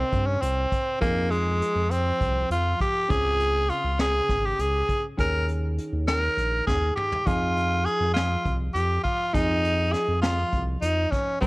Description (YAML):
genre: progressive instrumental, band music in an uneven meter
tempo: 202 BPM (eighths)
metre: 7/8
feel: straight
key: F minor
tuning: A4 = 441 Hz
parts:
  - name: raspy tenor saxophone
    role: melody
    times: 0.0-11.5 s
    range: Ab3 to Bb4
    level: -24 LUFS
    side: equal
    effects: none
  - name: vintage hollow-body jazz guitar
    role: accompaniment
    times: 0.0-11.5 s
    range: C3 to Bb4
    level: -34 LUFS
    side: equal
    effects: none
  - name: smooth gliding synth bass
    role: bass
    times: 0.0-11.5 s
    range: Ab1 to G2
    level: -27 LUFS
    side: equal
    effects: none
  - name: vintage brush drum kit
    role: drums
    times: 0.1-11.5 s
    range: hi-hat, kick drum, snare drum, toms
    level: -30 LUFS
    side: equal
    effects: none
room: light reverb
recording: worn, warbling old tape, cassette tape, warbly pitch drift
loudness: -22 LUFS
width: side -23 dB against mid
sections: 0.0-11.5 A section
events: drum fill 6.7-7.3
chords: 0.0 Cm7; 1.0 Fm7; 3.1 Dbmaj7; 5.2 Eb7sus4; 7.3 Fm7